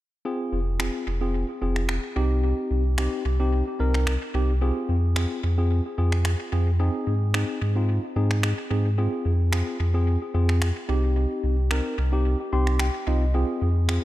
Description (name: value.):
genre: dance-pop.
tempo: 110 BPM.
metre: 4/4.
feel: straight.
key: F minor.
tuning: A4 = 436 Hz.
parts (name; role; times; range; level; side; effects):
tine electric piano; accompaniment; 0.3-14.0 s; C4 to C6; -28 LUFS; equal; medium stereo tremolo, analog delay.
warm sub bass; bass; 0.5-14.0 s; F1 to Ab2; -22 LUFS; equal; none.
electronic finger snaps; drums; 0.8-14.0 s; none; -33 LUFS; equal; analog delay.
room: light reverb, digital ambience.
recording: echo-heavy mix.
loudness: -22 LUFS.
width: side -15 dB against mid.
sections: 0.3-14.0 A section.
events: tine electric piano fill 12.3-13.3.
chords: 0.3 Fm; 2.2 Cm; 4.6 Fm; 6.8 Ab; 9.0 Fm; 10.9 Cm; 13.3 Fm.